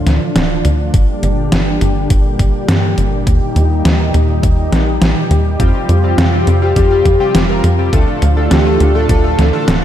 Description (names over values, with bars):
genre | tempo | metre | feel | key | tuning
synthwave | 103 BPM | 4/4 | straight | G minor | A4 = 442 Hz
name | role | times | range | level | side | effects
lush unison pad | sustained chords | 0.0-9.8 s | A2 to G4 | -18 LUFS | equal | chorus, sidechain pumping, shimmer reverb
tight sequencer bass | bass | 0.0-9.8 s | D1 to G2 | -14 LUFS | equal | sidechain pumping
detuned 8-bit digital drum machine | drums | 0.1-9.8 s | hi-hat, snare drum | -17 LUFS | right 1 dB | overdrive
electronic kick drum | drums | 0.9-9.2 s | none | -14 LUFS | equal | none
chorused polysynth | stabs | 5.6-9.8 s | G3 to Bb4 | -19 LUFS | left 2 dB | ping-pong delay, shimmer reverb
expressive synth lead | melody | 6.2-9.8 s | F4 to A4 | -17 LUFS | left 1 dB | chorus, tape echo, shimmer reverb
room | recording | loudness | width
moderate lush hall reverb, RT60 1.8 s | dreamy mix soaked in reverb | -10 LUFS | side -11 dB against mid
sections
0.0-9.8 A section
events
none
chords
0.0 Dm; 0.9 Gm; 3.3 Eb; 5.6 Fsus2; 7.9 Dm